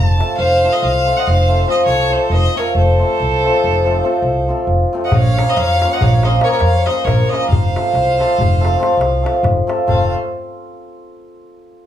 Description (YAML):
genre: balkan folk, Balkan wedding band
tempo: 278 BPM (eighths)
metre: 11/8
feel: straight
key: unclear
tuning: A4 = 440 Hz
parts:
  - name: clear fiddle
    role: melody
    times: 0.0-10.1 s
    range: C5 to A5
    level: -20 LUFS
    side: left 1 dB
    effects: none
  - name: upright bass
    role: bass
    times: 0.0-10.1 s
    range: F1 to F2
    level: -17 LUFS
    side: right 1 dB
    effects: none
  - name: darbuka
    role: percussion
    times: 0.1-0.3, 5.1-10.1 s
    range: none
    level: -19 LUFS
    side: left 2 dB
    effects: none
  - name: hammered dulcimer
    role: accompaniment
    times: 0.2-10.1 s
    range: F3 to Bb4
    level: -18 LUFS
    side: left 1 dB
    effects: none
  - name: dark violin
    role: second line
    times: 0.4-10.1 s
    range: A4 to Eb5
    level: -21 LUFS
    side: right 2 dB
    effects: none
room: moderate small room reverb, RT60 0.5 s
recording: small room ambience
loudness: -12 LUFS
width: side -10 dB against mid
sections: 0.4-9.9 A section; 9.9-11.9 B section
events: none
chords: 0.4 F; 5.1 Bbm; 7.5 F